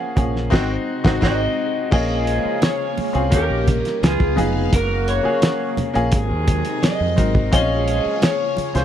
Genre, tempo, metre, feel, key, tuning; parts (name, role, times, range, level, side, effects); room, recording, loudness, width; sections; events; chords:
lush 1970s-style soul; 86 BPM; 4/4; straight; Bb minor; A4 = 440 Hz
electric guitar through a small old amp; melody; 0.0-8.8 s; Ab4 to Gb5; -23 LUFS; left 1 dB; lush chorus
bright grand piano; accompaniment; 0.0-8.8 s; F3 to Db5; -24 LUFS; left 2 dB
phased string machine; sustained chords; 0.0-8.8 s; C3 to F5; -29 LUFS; equal; ensemble chorus, phaser
overdriven fingered electric bass; bass; 0.2-8.8 s; F1 to F2; -22 LUFS; equal
cloth-damped thuddy drum kit; drums; 0.2-8.8 s; crash cymbal, hi-hat, kick drum, snare drum; -18 LUFS; equal
congas; percussion; 0.2-8.7 s; -28 LUFS; right 4 dB
mellow horn section; stabs; 0.5-8.6 s; C3 to Ab4; -27 LUFS; right 3 dB
little or no reverb; dry, close 1970s-style studio recording; -17 LUFS; side -10 dB against mid
0.0-1.9 A section; 1.9-8.8 B section
band accent 0.5-1.9
0.0 Gbmaj7; 0.5 Ab7; 1.9 Bbm7; 3.3 Eb7; 4.0 Db7; 4.7 Gbmaj7; 6.1 Ab7; 7.5 Bbm7